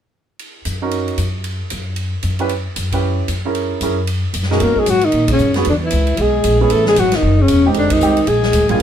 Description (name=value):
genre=jazz, small-group swing and bop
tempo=229 BPM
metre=4/4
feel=swing 60% on 8ths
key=unclear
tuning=A4 = 440 Hz
part: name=swinging big-band drum kit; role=drums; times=0.4-8.8 s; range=hi-hat, kick drum, ride cymbal, snare drum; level=-25 LUFS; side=equal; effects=none
part: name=upright bass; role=bass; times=0.7-8.8 s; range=E1 to B2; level=-19 LUFS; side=equal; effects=none
part: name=warm concert grand piano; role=accompaniment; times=0.8-8.8 s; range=B2 to B4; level=-20 LUFS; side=right 5 dB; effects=none
part: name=mellow alto saxophone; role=melody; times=4.5-8.8 s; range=C#4 to A#4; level=-15 LUFS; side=left 3 dB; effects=none
part: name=breathy trombone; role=second line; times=4.5-8.8 s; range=C#3 to A#3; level=-21 LUFS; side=right 6 dB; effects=none
room=light reverb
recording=band playing live in one room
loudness=-14 LUFS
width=side -9 dB against mid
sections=0.4-4.6 A section; 4.6-8.8 B section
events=band accent 5.3, 7.9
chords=0.4 F#6; 1.5 N.C.; 2.5 F#7(no3); 3.6 F#9; 4.6 Bmaj7; 5.7 E; 6.7 Amaj7; 7.7 Fm7; 8.3 A#7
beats=| 0.40 0.67 0.93 1.19 | 1.45 1.72 1.98 2.24 | 2.50 2.77 3.03 3.29 | 3.56 3.82 4.08 4.34 | 4.60 4.87 5.13 5.39 | 5.65 5.92 6.18 6.44 | 6.70 6.96 7.22 7.49 | 7.75 8.01 8.27 8.54 | 8.80